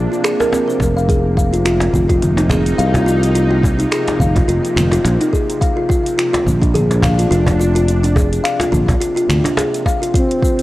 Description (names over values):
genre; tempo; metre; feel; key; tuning
organic downtempo; 106 BPM; 4/4; swing 56% on 16ths; unclear; A4 = 440 Hz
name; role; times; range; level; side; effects
bowed-like drone; sustained chords; 0.0-10.6 s; C3 to Eb4; -23 LUFS; right 1 dB; built-in reverb, sidechain pumping
sustaining fretless electric bass; bass; 0.0-9.4 s; F1 to D2; -16 LUFS; equal; tube saturation, sidechain pumping
kalimba; arpeggios; 0.1-10.6 s; C4 to F5; -17 LUFS; left 1 dB; tape echo
deep house drum kit; drums; 0.1-10.6 s; cabasa, congas, finger snaps, hi-hat; -23 LUFS; equal; overdrive, small room reverb
cajon; percussion; 0.4-10.0 s; none; -20 LUFS; equal; none
electronic kick drum; drums; 0.8-10.6 s; none; -17 LUFS; equal; overdrive, small room reverb
breathy mellow low ney; melody; 10.2-10.6 s; C4; -17 LUFS; equal; none
room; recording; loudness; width
light reverb, studio ambience; dry, gritty hardware recording, cassette tape; -13 LUFS; side -17 dB against mid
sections
0.0-10.1 A section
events
none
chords
0.0 Bb9; 1.1 Fm7; 5.6 Bbadd9